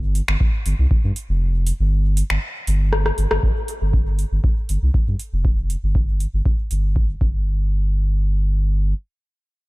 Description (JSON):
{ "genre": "dub techno", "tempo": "119 BPM", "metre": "4/4", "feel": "straight", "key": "unclear", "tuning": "A4 = 440 Hz", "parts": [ { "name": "soft dub sub bass", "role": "bass", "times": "0.0-8.9 s", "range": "F1 to G2", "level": "-19 LUFS", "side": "equal", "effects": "sidechain pumping" }, { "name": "booming analog drum machine", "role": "drums", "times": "0.2-6.8 s", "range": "finger snaps, hi-hat, rim click", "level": "-26 LUFS", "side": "left 2 dB", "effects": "dub echo" }, { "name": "electronic kick drum", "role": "drums", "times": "0.4-7.3 s", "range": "none", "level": "-19 LUFS", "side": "equal", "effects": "none" } ], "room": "little or no reverb", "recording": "none", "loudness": "-18 LUFS", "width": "side -22 dB against mid", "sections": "0.0-3.4 A section; 3.4-7.5 B section; 7.5-9.7 C section", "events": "kick drops out 1.4-3.4; drum fill 2.9-3.4; filter sweep on sub bass 3.4-7.5", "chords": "none" }